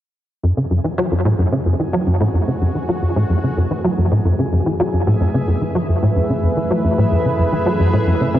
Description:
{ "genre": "ambient, sequencer-driven space music", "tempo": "110 BPM", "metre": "4/4", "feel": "straight", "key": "F# minor", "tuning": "A4 = 440 Hz", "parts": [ { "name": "sweeping resonant pad", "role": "sustained chords", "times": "0.4-8.4 s", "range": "F#2 to B4", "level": "-23 LUFS", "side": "equal", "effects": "chorus, cassette tape" }, { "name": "tight sequencer bass", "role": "riff", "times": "0.4-8.4 s", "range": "F#2 to F#3", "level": "-16 LUFS", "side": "equal", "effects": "ensemble chorus, cassette tape, tape echo" }, { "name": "bubbling stepped-filter texture", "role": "texture", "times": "0.4-8.4 s", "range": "G#4 to G#5", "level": "-28 LUFS", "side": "equal", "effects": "chorus, built-in reverb, cassette tape" } ], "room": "wet lush hall reverb, RT60 2.4 s", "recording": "home recording on cassette", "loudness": "-15 LUFS", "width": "side -12 dB against mid", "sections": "0.4-8.4 A section", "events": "fade-in on analog synth pad 0.4-8.4; fade-in on synth texture 0.4-8.4; filter sweep on analog synth bass 0.4-8.4", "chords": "0.4 F#m7" }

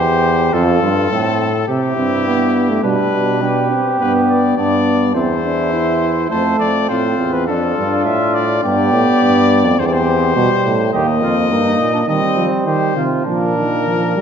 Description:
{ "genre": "classical, imitative canzona for brass ensemble", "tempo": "104 BPM", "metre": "4/4", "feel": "straight", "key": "F major", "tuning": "A4 = 439 Hz", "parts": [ { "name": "bright trumpet", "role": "melody", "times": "0.0-14.2 s", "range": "G4 to E5", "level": "-20 LUFS", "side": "left 7 dB", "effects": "none" }, { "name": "warm flugelhorn", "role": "second line", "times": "0.0-14.1 s", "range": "C4 to A4", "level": "-20 LUFS", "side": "right 3 dB", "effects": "none" }, { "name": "clear euphonium", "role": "bass", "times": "0.0-14.1 s", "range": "Eb2 to F3", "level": "-18 LUFS", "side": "right 1 dB", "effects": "none" }, { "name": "warm trombone", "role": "accompaniment", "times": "2.0-14.2 s", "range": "Eb3 to E4", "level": "-18 LUFS", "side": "right 1 dB", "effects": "none" } ], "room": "wet recital hall reverb, RT60 1.5 s", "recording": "dark, warm production, nothing above 7.8 kHz", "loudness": "-13 LUFS", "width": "side -7 dB against mid", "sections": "0.0-6.3 A section; 6.3-14.2 B section", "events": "none", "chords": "0.0 C/E; 0.5 F; 1.7 C; 2.8 G/B; 4.0 G; 5.2 C/E; 6.3 F; 7.5 Dm/F; 8.6 G; 9.8 C/E; 10.9 Eb; 12.1 Cm/Eb; 13.3 Fsus4/Bb" }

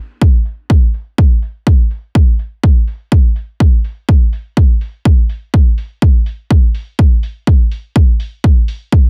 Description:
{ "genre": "house", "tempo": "124 BPM", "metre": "4/4", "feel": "swing 55% on 16ths", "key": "none", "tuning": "none", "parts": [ { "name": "electronic kick drum", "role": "drums", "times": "0.2-9.0 s", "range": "none", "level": "-11 LUFS", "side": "equal", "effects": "overdrive" }, { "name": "electronic hi-hat", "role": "drums", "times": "0.5-8.8 s", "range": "none", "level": "-45 LUFS", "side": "equal", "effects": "overdrive, low-pass filter on hats, low-pass filter on snare" } ], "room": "little or no reverb", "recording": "none", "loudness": "-13 LUFS", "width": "mono", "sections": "0.0-9.1 A section", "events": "filter sweep on drum 0.0-9.1", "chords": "none" }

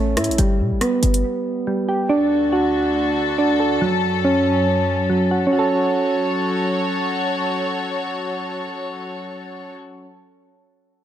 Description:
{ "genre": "hip hop, trap", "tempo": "140 BPM", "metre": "4/4", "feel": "half-time", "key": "F# phrygian", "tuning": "A4 = 439 Hz", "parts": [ { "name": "soft electric-piano-like synth keys", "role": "arpeggios", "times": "0.0-10.2 s", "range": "F#3 to A4", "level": "-20 LUFS", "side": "right 2 dB", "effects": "chorus, low-pass filter, tape echo" }, { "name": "short 808-style bass", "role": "bass", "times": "0.0-1.2 s", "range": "G1 to B2", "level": "-20 LUFS", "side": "left 1 dB", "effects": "none" }, { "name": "trap drum kit", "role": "drums", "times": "0.2-1.2 s", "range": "hi-hat, rim click", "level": "-25 LUFS", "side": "equal", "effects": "overdrive" }, { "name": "warm studio string section", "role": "sustained chords", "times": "2.1-9.7 s", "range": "D2 to C#5", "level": "-23 LUFS", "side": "left 3 dB", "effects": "none" } ], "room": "moderate scoring stage reverb, RT60 1.6 s, digital ambience", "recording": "none", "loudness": "-17 LUFS", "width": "side -10 dB against mid", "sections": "0.0-2.1 A section; 2.1-5.5 B section; 5.5-9.0 C section", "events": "break 1.2-2.1", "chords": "0.4 G; 2.1 D; 3.8 F#m" }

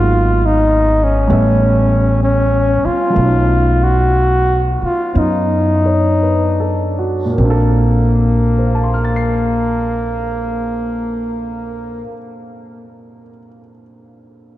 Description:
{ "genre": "jazz ballad", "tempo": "50-69 BPM", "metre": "4/4", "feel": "swing 67% on 8ths", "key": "unclear", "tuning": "A4 = 440 Hz", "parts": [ { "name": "mellow flugelhorn", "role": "melody", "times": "0.0-12.1 s", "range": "Bb3 to F#4", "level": "-17 LUFS", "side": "left 1 dB", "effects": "analog delay" }, { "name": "warm grand piano", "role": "accompaniment", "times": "0.0-14.6 s", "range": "Bb2 to C7", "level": "-21 LUFS", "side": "right 1 dB", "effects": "none" }, { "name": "upright bass", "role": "bass", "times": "0.0-12.0 s", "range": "G#1 to F#2", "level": "-16 LUFS", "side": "equal", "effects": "none" } ], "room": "moderate lush hall reverb, RT60 2.4 s", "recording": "dreamy mix soaked in reverb, cassette tape", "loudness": "-12 LUFS", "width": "side -14 dB against mid", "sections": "0.0-3.1 A section; 3.1-7.4 B section; 7.4-12.2 C section", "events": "slowing down 0.0-7.4", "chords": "0.0 G#m9; 1.3 A7; 3.1 B7; 7.4 Bbmaj9" }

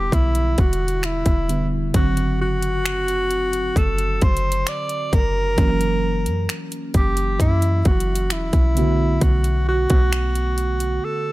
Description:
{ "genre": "contemporary R&B", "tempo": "66 BPM", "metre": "4/4", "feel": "straight", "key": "unclear", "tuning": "A4 = 441 Hz", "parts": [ { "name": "clear alto saxophone", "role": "melody", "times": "0.0-11.3 s", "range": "E4 to D5", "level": "-23 LUFS", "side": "equal", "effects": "ping-pong delay" }, { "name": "mellow FM electric piano", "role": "accompaniment", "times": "0.0-11.3 s", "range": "C#3 to F#4", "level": "-26 LUFS", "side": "right 2 dB", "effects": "chorus" }, { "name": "clean 808-style bass", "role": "bass", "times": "0.0-11.0 s", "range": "E1 to F#2", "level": "-22 LUFS", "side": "equal", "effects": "none" }, { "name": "trap drum kit", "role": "drums", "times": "0.1-11.0 s", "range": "finger snaps, hi-hat, kick drum", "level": "-20 LUFS", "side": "equal", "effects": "none" } ], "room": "little or no reverb", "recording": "none", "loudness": "-17 LUFS", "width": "side -18 dB against mid", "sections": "0.0-11.3 A section", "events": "break 11.0", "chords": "0.0 Em7; 1.9 D7/F#; 5.6 F#7; 8.8 Bm7" }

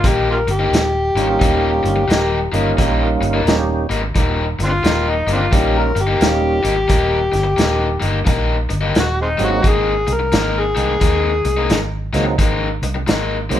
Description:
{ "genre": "electric blues shuffle", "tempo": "88 BPM", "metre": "4/4", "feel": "swing 64% on 8ths", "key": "Eb mixolydian", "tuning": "A4 = 439 Hz", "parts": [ { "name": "overdriven harmonica", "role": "melody", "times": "0.0-11.9 s", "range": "Ab3 to Bb4", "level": "-18 LUFS", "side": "left 2 dB", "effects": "none" }, { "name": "overdriven electric guitar", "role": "riff", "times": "0.0-13.6 s", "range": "Eb3 to Eb4", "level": "-21 LUFS", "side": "left 3 dB", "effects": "none" }, { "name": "vintage muted fingered electric bass", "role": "bass", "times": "0.0-13.6 s", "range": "Eb1 to Eb2", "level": "-21 LUFS", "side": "equal", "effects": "none" }, { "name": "vintage drum kit", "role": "drums", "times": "0.0-13.6 s", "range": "hi-hat, kick drum, snare drum", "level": "-19 LUFS", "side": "equal", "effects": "none" }, { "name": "tonewheel organ", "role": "accompaniment", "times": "1.2-13.6 s", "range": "Gb3 to G4", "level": "-20 LUFS", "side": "right 4 dB", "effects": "slow rotary speaker, overdrive, chorus vibrato" } ], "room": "light reverb", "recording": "band playing live in one room", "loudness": "-14 LUFS", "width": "side -11 dB against mid", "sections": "0.0-13.6 A section", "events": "none", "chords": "0.0 Eb9; 9.6 Ab9" }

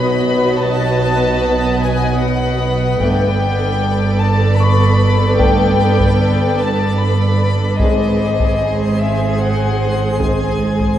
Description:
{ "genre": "cinematic, suspense film score", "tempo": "75 BPM", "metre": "3/4", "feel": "straight", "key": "unclear", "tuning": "A4 = 443 Hz", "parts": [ { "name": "warm studio violin section", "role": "melody", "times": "0.0-11.0 s", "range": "D#5 to B5", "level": "-22 LUFS", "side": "left 4 dB", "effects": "none" }, { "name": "warm chamber violin section", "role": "second line", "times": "0.0-11.0 s", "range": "G#4 to D#5", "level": "-24 LUFS", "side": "left 2 dB", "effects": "none" }, { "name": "dark chamber viola section", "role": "accompaniment", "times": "0.0-11.0 s", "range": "B3 to A4", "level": "-22 LUFS", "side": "right 2 dB", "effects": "none" }, { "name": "clear trombone section", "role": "sustained chords", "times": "0.0-10.5 s", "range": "D3 to A3", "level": "-26 LUFS", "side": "equal", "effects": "none" }, { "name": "mellow French horn section", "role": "sustained chords", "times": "0.0-10.5 s", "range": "B3 to B4", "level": "-24 LUFS", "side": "left 3 dB", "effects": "none" }, { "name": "twinkling granular texture", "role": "sustained chords", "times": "0.0-11.0 s", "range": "B4 to D#6", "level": "-25 LUFS", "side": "left 1 dB", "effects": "built-in reverb" }, { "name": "dark chamber double bass section", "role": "bass", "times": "0.0-11.0 s", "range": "G1 to B1", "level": "-19 LUFS", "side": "right 2 dB", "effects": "none" }, { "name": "dark studio cello section", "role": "bass", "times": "0.0-11.0 s", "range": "G2 to B2", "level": "-19 LUFS", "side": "right 2 dB", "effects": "none" }, { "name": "music box", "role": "texture", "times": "1.4-11.0 s", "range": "B4 to C#6", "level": "-26 LUFS", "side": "left 3 dB", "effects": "none" }, { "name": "taiko ensemble", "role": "drums", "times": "3.0-11.0 s", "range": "none", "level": "-21 LUFS", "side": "equal", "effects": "none" } ], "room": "wet concert hall reverb, RT60 1.9 s", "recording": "dark, warm production", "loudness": "-13 LUFS", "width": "side -11 dB against mid", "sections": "0.0-11.0 A section", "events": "none", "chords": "0.0 B; 3.0 Gadd9; 7.8 G#" }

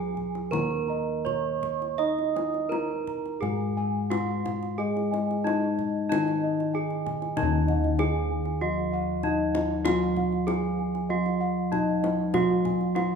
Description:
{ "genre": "Javanese gamelan", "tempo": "82-97 BPM", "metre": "4/4", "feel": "straight", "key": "Eb slendro", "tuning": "A4 = 439 Hz", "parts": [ { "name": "gamelan-type bronze metallophone", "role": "melody", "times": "0.0-13.2 s", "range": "Eb4 to Eb5", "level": "-29 LUFS", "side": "right 2 dB", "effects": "none" }, { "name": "gamelan-type bronze metallophone", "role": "accompaniment", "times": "0.0-13.2 s", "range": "Eb3 to Eb4", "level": "-30 LUFS", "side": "equal", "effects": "none" }, { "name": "gamelan-type bossed gongs", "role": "arpeggios", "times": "0.0-13.2 s", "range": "Eb5 to Db6-25c", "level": "-36 LUFS", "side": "left 5 dB", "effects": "none" }, { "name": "gamelan-type bronze metallophone", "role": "arpeggios", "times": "0.0-13.2 s", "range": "Eb5 to Eb6", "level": "-35 LUFS", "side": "right 3 dB", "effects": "none" }, { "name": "gamelan-type bossed gongs", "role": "bass", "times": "0.0-13.0 s", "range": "Eb2 to Eb5", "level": "-32 LUFS", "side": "left 1 dB", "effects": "none" }, { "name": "kendang", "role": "percussion", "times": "0.2-13.1 s", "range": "none", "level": "-35 LUFS", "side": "left 6 dB", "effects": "none" } ], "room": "wet recital hall reverb, RT60 1.4 s", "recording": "minimal, uncompressed stereo recording", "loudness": "-24 LUFS", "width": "side -6 dB against mid", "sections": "0.0-7.4 A section; 7.4-13.2 B section", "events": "none", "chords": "none" }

